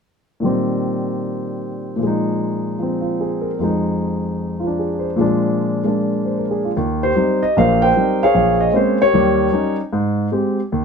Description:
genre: solo jazz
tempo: 151 BPM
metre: 4/4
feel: swing 65% on 8ths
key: Eb major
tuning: A4 = 436 Hz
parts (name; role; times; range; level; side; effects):
- dark concert grand piano; solo; 0.4-10.8 s; Bb1 to G5; -16 LUFS; equal; none
room: light reverb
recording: none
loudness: -16 LUFS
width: side -6 dB against mid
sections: 0.4-6.8 A section; 6.8-10.8 B section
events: none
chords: 0.4 Eb6/Bb; 2.0 Bb7sus4; 3.6 Fm7; 5.2 Bb7; 6.8 Eb6; 9.1 Eb7; 9.9 Abmaj7

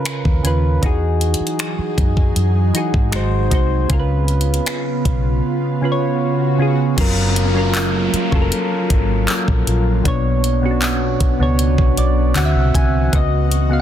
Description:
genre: contemporary R&B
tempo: 78 BPM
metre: 4/4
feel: straight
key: F# major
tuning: A4 = 439 Hz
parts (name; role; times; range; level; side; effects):
- soft electric-piano-like synth keys; accompaniment; 0.0-13.8 s; B2 to G#5; -20 LUFS; equal; chorus
- downlifter and swell; sound effects; 6.1-13.1 s; none; -28 LUFS; equal; none
- smooth R&B drum kit; drums; 0.1-13.7 s; crash cymbal, finger snaps, handclaps, hi-hat, kick drum; -19 LUFS; equal; soft clipping on snare
- vintage muted fingered electric bass; bass; 0.3-13.8 s; E#1 to G#2; -18 LUFS; equal; none
- ethereal airy pad; sustained chords; 1.3-13.8 s; B2 to G#4; -24 LUFS; right 1 dB; ensemble chorus, built-in reverb
room: digital ambience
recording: dense, heavily limited modern master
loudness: -15 LUFS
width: side -10 dB against mid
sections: 0.0-7.0 A section; 7.0-13.8 B section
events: silent gap 5.4-7.0; swell 6.1-7.0; synth keys fill 11.6-13.1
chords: 0.0 C#7; 0.8 Emaj9; 3.1 G#7; 3.9 C#7; 7.0 F#maj7; 10.1 Bmadd9; 12.4 D9; 13.1 C#9sus4

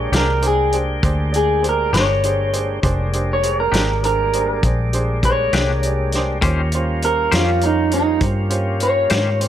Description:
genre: slow blues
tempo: 67 BPM (dotted quarters)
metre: 12/8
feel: straight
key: Bb mixolydian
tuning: A4 = 440 Hz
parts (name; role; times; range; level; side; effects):
- electric guitar through a small old amp; melody; 0.0-9.5 s; Eb4 to Db5; -19 LUFS; right 1 dB; none
- clear concert grand piano; accompaniment; 0.0-9.5 s; Db4 to D5; -27 LUFS; right 3 dB; plate reverb
- tonewheel organ; sustained chords; 0.0-9.5 s; G3 to G4; -27 LUFS; equal; slow rotary speaker, plate reverb
- vintage muted fingered electric bass; bass; 0.0-9.5 s; F1 to Ab2; -21 LUFS; equal; none
- twangy electric guitar; accompaniment; 0.1-9.3 s; Bb2 to C5; -24 LUFS; left 5 dB; tremolo, plate reverb
- warm soul drum kit; drums; 0.1-9.5 s; hi-hat, kick drum, snare drum; -22 LUFS; equal; none
room: light reverb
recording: none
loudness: -16 LUFS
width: side -10 dB against mid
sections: 0.0-9.5 A section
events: clean electric guitar solo 0.0-9.5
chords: 0.0 Bb13; 6.4 Eb13

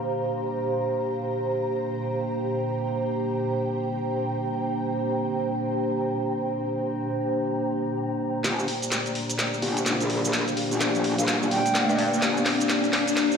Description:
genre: bass house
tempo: 127 BPM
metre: 4/4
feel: swing 61% on 16ths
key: G minor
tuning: A4 = 440 Hz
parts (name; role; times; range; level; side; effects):
- dark analog pad; sustained chords; 0.0-13.4 s; Bb3 to D5; -28 LUFS; left 1 dB; wide subtle chorus
- ethereal airy pad; texture; 0.0-13.4 s; G4 to Bb5; -29 LUFS; right 1 dB; ensemble chorus, built-in reverb
- metallic wobble bass; bass; 8.4-12.4 s; F1 to G2; -27 LUFS; left 1 dB; chorus, overdrive, high-pass filter
- garage drum kit; drums; 8.4-13.4 s; hi-hat, shaker, snare drum; -26 LUFS; equal; high-pass filter on snare, high-pass filter on hats, high-pass filter on perc, high-pass filter on room
- riser; sound effects; 9.8-13.4 s; none; -30 LUFS; left 1 dB; none
- mellow hollow silver concert flute; melody; 11.2-12.0 s; F5 to G5; -29 LUFS; right 2 dB; ping-pong delay
room: moderate lush hall reverb, RT60 1.6 s, digital ambience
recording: played on a big sound system in a bare room, stone room reverb, high-pass filter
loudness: -23 LUFS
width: side -6 dB against mid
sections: 0.0-8.4 A section; 8.4-13.4 B section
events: filter sweep on analog synth pad 0.0-8.4; build-up 8.4-13.4; drum fill 8.4-13.4; riser 9.8-13.4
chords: 0.0 Gm

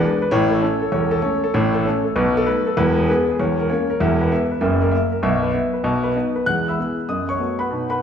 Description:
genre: jazz, stride piano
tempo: 195 BPM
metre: 4/4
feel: swing 65% on 8ths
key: E major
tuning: A4 = 441 Hz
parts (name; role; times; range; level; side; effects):
- warm concert grand piano; solo; 0.0-8.0 s; E1 to F#6; -17 LUFS; equal; none
room: wet large studio reverb, RT60 1.4 s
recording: band playing live in one room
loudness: -17 LUFS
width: side -8 dB against mid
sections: 0.0-6.5 A section; 6.5-8.0 B section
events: none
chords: 0.3 A; 2.2 B7; 2.8 E; 3.4 A#dim/E; 4.0 E5; 4.6 F#7; 5.2 E5/B; 5.8 B; 6.5 E; 7.1 B7/F#

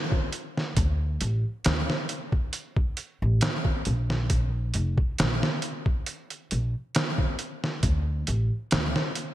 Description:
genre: trip hop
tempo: 68 BPM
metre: 4/4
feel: straight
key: D minor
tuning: A4 = 444 Hz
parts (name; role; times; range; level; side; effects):
- trip hop sampler-style drum kit; drums; 0.1-9.3 s; hi-hat, kick drum, snare drum; -26 LUFS; equal; gated reverb
- upright bass; bass; 0.8-8.9 s; F1 to D2; -26 LUFS; equal; none
room: light reverb, digital ambience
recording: bright 1980s-style digital production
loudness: -24 LUFS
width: side -14 dB against mid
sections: 0.0-9.3 A section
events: none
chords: none

